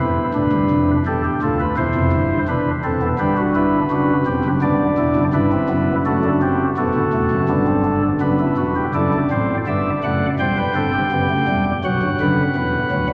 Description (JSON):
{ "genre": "classical, baroque-style 4-part fugue for pipe organ", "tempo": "84 BPM", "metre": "4/4", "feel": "straight", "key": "C major", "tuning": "A4 = 440 Hz", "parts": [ { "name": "pipe organ, flutes", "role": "solo", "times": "0.0-13.1 s", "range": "D1 to G5", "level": "-18 LUFS", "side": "equal", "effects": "none" } ], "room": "wet cathedral reverb, RT60 5.1 s", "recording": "none", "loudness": "-18 LUFS", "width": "mono", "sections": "0.0-8.9 A section; 8.9-13.1 B section", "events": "none", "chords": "0.3 Bdim/D; 1.8 C/E; 3.2 G; 6.1 F#dim; 7.5 G; 8.9 D/F#; 10.4 C/E; 11.8 Bm" }